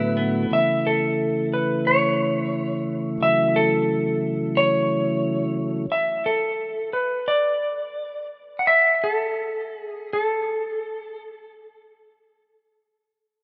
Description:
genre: dream pop.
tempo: 88 BPM.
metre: 4/4.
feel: uneven beats.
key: unclear.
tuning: A4 = 442 Hz.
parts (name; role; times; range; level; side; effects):
clean lap steel guitar; melody; 0.0-11.2 s; A4 to F#5; -24 LUFS; equal; delay.
mellow tonewheel organ; sustained chords; 0.0-5.9 s; A2 to E4; -26 LUFS; equal; slow rotary speaker.
clean electric guitar; arpeggios; 0.0-1.1 s; A2 to E4; -32 LUFS; equal; subtle chorus, delay.
room: moderate lush hall reverb, RT60 2.7 s.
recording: rough home demo mix.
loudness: -22 LUFS.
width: mono.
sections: 0.0-11.6 A section.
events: slowing down 5.9-11.6.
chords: 0.0 E9sus4/A; 0.5 A; 3.2 F#m7; 5.9 N.C..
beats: | 0.51 1.18 1.86 2.53 | 3.20 3.88 4.55 5.23 | 5.90 6.58 7.26 7.95 | 8.65 9.37 10.10 10.86.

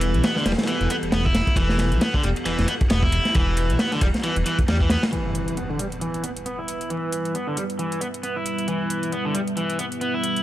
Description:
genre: breakbeat, breaks.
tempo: 135 BPM.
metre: 4/4.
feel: swing 58% on 16ths.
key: E minor.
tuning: A4 = 440 Hz.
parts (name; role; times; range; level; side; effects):
deep dark ambient pad; sustained chords; 0.0-10.4 s; E3 to E5; -30 LUFS; right 1 dB; chorus, built-in reverb, sidechain pumping.
crunchy overdriven guitar; riff; 0.0-10.4 s; D3 to E4; -25 LUFS; equal; tube saturation, low-pass filter, dub echo.
dark detuned saw bass; bass; 0.0-5.0 s; E1 to E2; -23 LUFS; equal; tube saturation.
crunchy breakbeat drum kit; drums; 0.0-5.1 s; kick drum, ride cymbal, snare drum; -23 LUFS; equal; none.
electronic hi-hat; drums; 0.0-10.4 s; none; -34 LUFS; right 1 dB; none.
impact; sound effects; 5.1-6.9 s; none; -32 LUFS; equal; none.
room: studio reverb.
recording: vinyl crackle.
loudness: -20 LUFS.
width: side -14 dB against mid.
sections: 0.0-5.1 A section; 5.1-10.4 B section.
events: impact 5.1-6.9; filter sweep on overdriven electric guitar 5.1-10.4.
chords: 0.0 Em.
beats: 0.24 0.68 1.12 | 1.57 2.01 2.46 2.90 | 3.35 3.79 4.24 4.68 | 5.12 5.57 6.01 6.46 | 6.90 7.35 7.79 8.24 | 8.68 9.12 9.57 10.01.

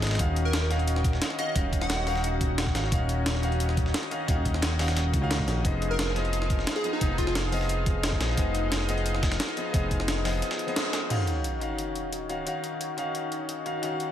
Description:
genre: liquid drum and bass.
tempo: 176 BPM.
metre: 4/4.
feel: straight.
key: Eb minor.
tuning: A4 = 445 Hz.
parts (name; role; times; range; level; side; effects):
bright concert grand piano; accompaniment; 0.0-14.1 s; Eb3 to F5; -32 LUFS; left 2 dB; tape echo.
lush unison pad; sustained chords; 0.0-14.1 s; Db4 to F5; -34 LUFS; left 1 dB; chorus.
smooth synth bass; bass; 0.0-10.4 s; Eb1 to Db2; -28 LUFS; equal; none.
breakbeat sampler-style drum kit; drums; 0.0-14.1 s; crash cymbal, hi-hat, snare drum; -33 LUFS; equal; small room ambience.
dusty soul sampler-style drum kit; drums; 0.0-11.0 s; hi-hat, snare drum; -36 LUFS; equal; high-pass filter on hats, small room ambience, high-pass filter on snare.
electronic kick drum; drums; 0.2-10.0 s; none; -28 LUFS; equal; small room ambience.
plucky unison lead; melody; 0.5-2.3, 5.9-7.3 s; Eb4 to Gb5; -34 LUFS; equal; diffuse ambient delay.
sub drop; sound effects; 11.1-12.5 s; none; -32 LUFS; equal; none.
room: light reverb.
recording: none.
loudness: -25 LUFS.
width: side -10 dB against mid.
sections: 0.0-11.1 A section; 11.1-14.1 B section.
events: drop 0.0-11.1; band accent 10.8; impact 11.1-12.5.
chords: 0.2 Ebm9; 5.6 Fm7b5; 11.1 Ebm9.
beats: | 0.19 0.54 0.88 1.22 | 1.56 1.90 2.24 2.58 | 2.92 3.26 3.60 3.94 | 4.29 4.63 4.97 5.31 | 5.65 5.99 6.33 6.67 | 7.01 7.35 7.69 8.04 | 8.38 8.72 9.06 9.40 | 9.74 10.08 10.42 10.76 | 11.10 11.44 11.79 12.13 | 12.47 12.81 13.15 13.49 | 13.83.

